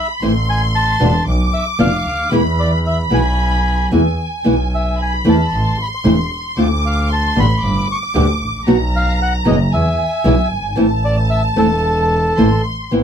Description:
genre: tango.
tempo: 114 BPM.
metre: 4/4.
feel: rubato.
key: A harmonic minor.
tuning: A4 = 438 Hz.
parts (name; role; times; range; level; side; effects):
bandoneon; melody; 0.0-12.6 s; A4 to D6; -20 LUFS; equal; none.
clear studio violin section; second line; 0.0-12.9 s; G#5 to D6; -22 LUFS; equal; none.
nylon-string guitar; accompaniment; 0.2-13.0 s; B2 to G4; -14 LUFS; equal; none.
clear double bass; bass; 0.2-13.0 s; E1 to E2; -17 LUFS; equal; none.
room: light reverb.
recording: none.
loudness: -13 LUFS.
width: side -8 dB against mid.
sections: 0.0-12.9 A section.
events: none.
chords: 0.2 Am; 1.3 Bdim; 2.3 E; 5.5 Am; 6.6 Dm7; 7.6 G; 8.7 B; 9.7 E; 10.8 Am.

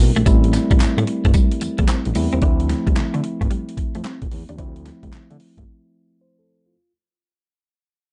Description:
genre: R&B, new jack swing.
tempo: 111 BPM.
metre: 4/4.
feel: swing 65% on 16ths.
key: D minor.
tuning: A4 = 439 Hz.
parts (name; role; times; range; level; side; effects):
mellow tine electric piano; accompaniment; 0.0-6.9 s; F3 to C5; -26 LUFS; equal; low-pass filter.
smooth gliding synth bass; bass; 0.0-5.6 s; A1 to D3; -25 LUFS; equal; none.
clean electric guitar; riff; 0.2-5.7 s; G3 to D4; -28 LUFS; equal; ensemble chorus, low-pass filter.
boom bap sampler-style drum kit; drums; 0.2-5.7 s; handclaps, hi-hat, kick drum, snare drum, tambourine; -20 LUFS; equal; none.
group handclap; percussion; 0.8-5.3 s; none; -40 LUFS; equal; none.
room: little or no reverb.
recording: dark, warm production, nothing above 11.0 kHz.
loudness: -19 LUFS.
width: mono.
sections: 0.0-6.7 A section.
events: fade-out 0.0-6.7; filter sweep 0.0-6.7; break 5.7-6.7.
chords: 0.0 Am7; 2.4 Dm7.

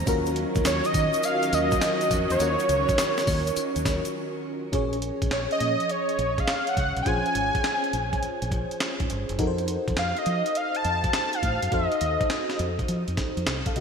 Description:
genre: R&B, new jack swing.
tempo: 103 BPM.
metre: 4/4.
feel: swing 67% on 16ths.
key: Bb minor.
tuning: A4 = 440 Hz.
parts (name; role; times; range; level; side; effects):
FM electric piano with soft pad layer; accompaniment; 0.0-13.8 s; F3 to F5; -30 LUFS; equal; chorus, phaser, shimmer reverb.
warm studio string section; sustained chords; 0.0-4.7 s; Eb3 to Db4; -31 LUFS; right 2 dB; shimmer reverb.
fingered electric bass; bass; 0.0-13.8 s; Gb1 to F3; -30 LUFS; equal; none.
breakbeat sampler-style drum kit; drums; 0.1-13.8 s; handclaps, hi-hat, kick drum, snare drum, tambourine; -29 LUFS; equal; gated reverb.
tube shaker; percussion; 0.1-4.1 s; none; -41 LUFS; left 11 dB; none.
wide unison lead; melody; 0.7-12.6 s; Db5 to A5; -26 LUFS; equal; shimmer reverb.
room: wet lush hall reverb, RT60 2.5 s.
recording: bright 1980s-style digital production.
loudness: -23 LUFS.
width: side -6 dB against mid.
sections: 0.0-4.7 A section; 4.7-13.8 B section.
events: break 4.1-4.7.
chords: 0.1 Ebm7; 4.7 Bbm9; 9.4 F7b9.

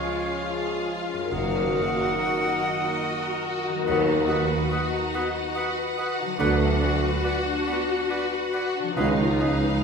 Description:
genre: classical.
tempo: 70 BPM.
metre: 3/4.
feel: rubato.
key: unclear.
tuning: A4 = 440 Hz.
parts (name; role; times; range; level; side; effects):
rich studio violin section; melody; 0.0-9.8 s; Eb5 to F#5; -35 LUFS; left 1 dB; none.
bright silver concert flute; second line; 0.0-9.5 s; F5 to Gb5; -34 LUFS; equal; none.
clear clarinet; second line; 0.0-9.6 s; Ab4 to B4; -35 LUFS; left 1 dB; none.
mellow cor anglais; second line; 0.0-9.6 s; Db5 to D#5; -35 LUFS; right 2 dB; none.
rich studio violin section; second line; 0.0-9.8 s; Ab3 to B4; -33 LUFS; left 3 dB; none.
rich studio viola section; accompaniment; 0.0-9.8 s; D#4 to Gb4; -29 LUFS; left 2 dB; none.
mellow French horn section; sustained chords; 0.0-9.3 s; Ab3 to Ab4; -34 LUFS; left 3 dB; none.
mellow trombone section; sustained chords; 0.0-9.3 s; D3 to G#3; -32 LUFS; right 4 dB; none.
concert harp; arpeggios; 0.0-9.8 s; Gb2 to B4; -31 LUFS; left 5 dB; none.
clear studio double bass section; bass; 1.3-9.7 s; Gb1 to D#2; -32 LUFS; right 2 dB; none.
warm studio cello section; bass; 1.3-9.7 s; C#2 to Gb2; -32 LUFS; right 3 dB; none.
warm tuba; bass; 1.3-9.7 s; Gb1 to D#2; -31 LUFS; right 2 dB; none.
timpani; percussion; 1.3-2.6, 9.0-9.8 s; Gb2 to C#3; -37 LUFS; equal; none.
room: wet recital hall reverb, RT60 1.6 s.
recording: recorded in a church or concert hall.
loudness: -22 LUFS.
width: side -5 dB against mid.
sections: 0.0-9.8 A section.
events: none.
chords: 0.0 Db; 1.3 Ebm/Gb; 3.9 B/D#; 6.4 Bm/D; 9.0 C#9.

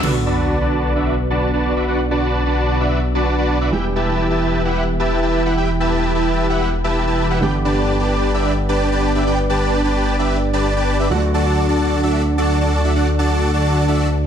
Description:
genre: EDM.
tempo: 130 BPM.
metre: 4/4.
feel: straight.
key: B minor.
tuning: A4 = 440 Hz.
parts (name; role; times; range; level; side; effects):
warm grand piano; accompaniment; 0.0-14.3 s; D3 to G4; -26 LUFS; right 3 dB; ping-pong delay.
lush unison pad; sustained chords; 0.0-14.3 s; D3 to B4; -23 LUFS; equal; chorus.
dense compressed supersaw; riff; 0.0-14.1 s; D4 to A5; -19 LUFS; equal; low-pass filter, ping-pong delay.
wide detuned saw bass; bass; 0.0-14.3 s; E1 to D2; -20 LUFS; equal; chorus.
sub drop; sound effects; 0.0-1.9 s; none; -26 LUFS; left 1 dB; none.
room: moderate digital room reverb, RT60 1.2 s, digital ambience.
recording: none.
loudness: -15 LUFS.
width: side -8 dB against mid.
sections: 0.0-14.3 A section.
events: impact 0.0-1.9.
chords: 0.0 Bm; 3.7 Em; 7.4 G; 11.1 D.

